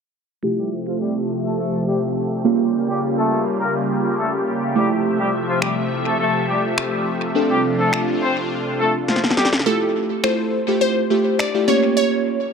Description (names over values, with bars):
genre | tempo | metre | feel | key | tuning
dance-pop | 104 BPM | 4/4 | straight | F major | A4 = 440 Hz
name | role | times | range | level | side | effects
glassy digital keys | accompaniment | 0.4-12.4 s | A3 to A4 | -21 LUFS | right 2 dB | chorus, low-pass filter, analog delay
filtered supersaw swell | sustained chords | 0.4-9.6 s | C3 to E5 | -23 LUFS | left 1 dB | phaser, low-pass filter
clear horn section | melody | 0.6-9.5 s | F3 to C5 | -23 LUFS | left 2 dB | low-pass filter, analog delay
electronic finger snaps and snare drum | drums | 5.6-11.5 s | none | -23 LUFS | left 1 dB | analog delay
glassy wavetable pluck | melody | 9.7-12.5 s | A4 to D5 | -21 LUFS | left 1 dB | chorus, analog delay
room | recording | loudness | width
moderate spring reverb, RT60 2.1 s | echo-heavy mix | -17 LUFS | side -6 dB against mid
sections
0.4-9.7 A section; 9.7-12.5 B section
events
filter sweep 0.4-9.7; drum fill 9.1-9.7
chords
0.4 Fmaj9; 2.4 Bbm6; 4.8 Fmaj9; 7.4 Dm7; 9.7 Fmaj9; 11.7 Bbm6